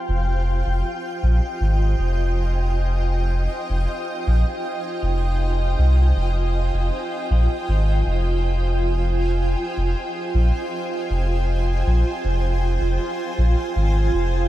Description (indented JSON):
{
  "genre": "ambient dub",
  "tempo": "79 BPM",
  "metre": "4/4",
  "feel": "straight",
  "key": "F minor",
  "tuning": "A4 = 439 Hz",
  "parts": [
    { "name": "granular cloud pad", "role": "sustained chords", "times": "0.0-14.5 s", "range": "F4 to Ab5", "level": "-25 LUFS", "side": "right 1 dB", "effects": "built-in reverb" },
    { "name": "warm sub bass", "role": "bass", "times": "0.1-14.5 s", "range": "F1 to C2", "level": "-19 LUFS", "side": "equal", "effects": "none" }
  ],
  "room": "little or no reverb",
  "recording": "vinyl crackle",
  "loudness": "-19 LUFS",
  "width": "side -14 dB against mid",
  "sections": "0.1-14.5 A section",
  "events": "none",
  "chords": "0.1 Fm7"
}